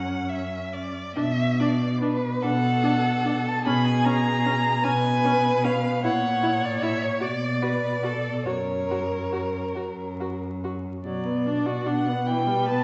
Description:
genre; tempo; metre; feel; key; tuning
classical, slow romantic movement for string quartet; 45-52 BPM (dotted quarters); 6/8; rubato; B minor; A4 = 440 Hz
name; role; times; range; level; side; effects
rich violin; second line; 0.0-12.8 s; G#4 to F#5; -32 LUFS; equal; none
warm viola; accompaniment; 0.0-12.8 s; E3 to F#4; -32 LUFS; equal; none
rich cello; bass; 0.0-12.8 s; F#2 to B2; -29 LUFS; equal; none
warm violin; melody; 2.4-12.8 s; C#5 to B5; -29 LUFS; equal; none
room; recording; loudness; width
wet recital hall reverb, RT60 1.4 s; heard from further back in the room, vinyl crackle, nothing above 8.0 kHz; -25 LUFS; mono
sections
0.0-1.2 A section; 1.2-12.8 B section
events
none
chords
0.0 F#5; 1.2 Bm; 3.7 C#5/B; 6.0 F#7/A#; 7.2 Bm; 8.5 F#; 11.1 Bm; 12.3 Em/B

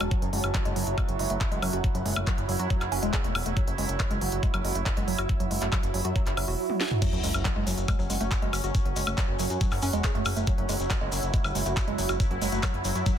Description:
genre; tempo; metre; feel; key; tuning
psychedelic trance; 139 BPM; 4/4; straight; unclear; A4 = 440 Hz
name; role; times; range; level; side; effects
bubbling stepped-filter texture; sustained chords; 0.0-13.2 s; F#3 to E4; -33 LUFS; right 4 dB; chorus, built-in reverb, sidechain pumping
woody wave-folded pluck; riff; 0.0-13.1 s; F#3 to G#4; -34 LUFS; moving between left 5 dB and right 5 dB; chorus, auto-pan, sidechain pumping, digital delay
fat analog bass; bass; 0.0-13.0 s; E1 to F#2; -31 LUFS; equal; none
drum and bass drum kit; drums; 0.0-13.1 s; crash cymbal, handclaps, hi-hat, snare drum, toms, woodblock; -32 LUFS; left 1 dB; none
granular cloud pad; texture; 0.0-13.2 s; F#4 to A5; -37 LUFS; right 2 dB; built-in reverb, sidechain pumping
electronic kick drum; drums; 0.1-13.1 s; none; -27 LUFS; equal; none
shekere; percussion; 7.0-13.1 s; none; -39 LUFS; left 4 dB; none
sub drop; sound effects; 7.0-8.7 s; none; -37 LUFS; equal; none
room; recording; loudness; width
little or no reverb; dense, heavily limited modern master; -24 LUFS; side -9 dB against mid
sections
0.0-7.0 A section; 7.0-13.2 B section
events
drum fill 6.7-7.0; drop 7.0-13.2; impact 7.0-8.7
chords
0.0 F#5

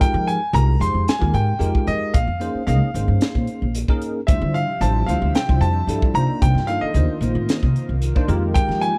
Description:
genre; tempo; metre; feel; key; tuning
electric jazz fusion; 112 BPM; 4/4; straight; unclear; A4 = 440 Hz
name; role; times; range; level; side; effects
bright grand piano; melody; 0.0-9.0 s; Eb5 to C6; -27 LUFS; equal; none
bell-like tine electric piano; accompaniment; 0.0-8.9 s; G3 to Eb5; -28 LUFS; equal; analog chorus
upright bass; bass; 0.0-8.9 s; Ab1 to F3; -22 LUFS; equal; none
crisp fusion drum kit; drums; 0.0-9.0 s; hi-hat, kick drum, snare drum; -22 LUFS; equal; none
airy breathy pad; sustained chords; 4.3-9.0 s; C3 to E5; -33 LUFS; equal; chorus
room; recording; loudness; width
studio ambience; none; -20 LUFS; mono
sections
0.0-9.0 A section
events
none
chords
0.0 Fm11; 2.1 Bbm11; 4.3 Dm11; 6.2 Cm11; 8.3 Fm11

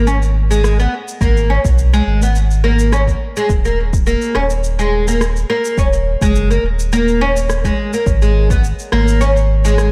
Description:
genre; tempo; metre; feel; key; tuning
organic downtempo; 105 BPM; 4/4; swing 53% on 16ths; G# minor; A4 = 440 Hz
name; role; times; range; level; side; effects
oud; arpeggios; 0.0-9.9 s; G#3 to C#4; -19 LUFS; equal; delay
warm sub bass; bass; 0.0-9.9 s; D#1 to B1; -17 LUFS; equal; sidechain pumping
electronic shaker and rim click; drums; 0.1-9.9 s; none; -29 LUFS; equal; overdrive, studio reverb
electronic kick drum; drums; 1.2-8.6 s; none; -20 LUFS; equal; overdrive, studio reverb
quartz singing bowl; texture; 8.1-9.9 s; C#5; -31 LUFS; equal; none
room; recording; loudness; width
light reverb, studio ambience; none; -15 LUFS; mono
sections
0.0-9.9 A section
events
none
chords
0.0 G#madd9; 3.5 D#5; 8.1 G#sus2

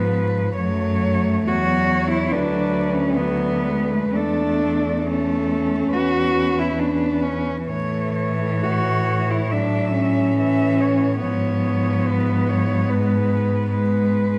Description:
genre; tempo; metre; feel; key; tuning
classical, lyrical piece for cello ensemble; 68 BPM; 4/4; uneven beats, rubato; A major; A4 = 440 Hz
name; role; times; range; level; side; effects
rich cello; melody; 0.0-14.4 s; A4 to E5; -30 LUFS; equal; none
warm cello; second line; 0.0-14.1 s; A3 to F#4; -25 LUFS; equal; none
warm cello; accompaniment; 0.0-14.4 s; E3 to F#4; -27 LUFS; equal; none
rich cello; bass; 0.0-14.4 s; D2 to A2; -26 LUFS; equal; none
room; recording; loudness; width
wet recital hall reverb, RT60 1.7 s; vinyl crackle; -21 LUFS; mono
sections
0.0-14.4 A section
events
none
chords
0.0 C#7/G# (rootless); 0.6 F#m7; 2.3 Bm/D; 4.1 A/E; 5.9 E5; 7.7 A; 11.2 C#7/G#

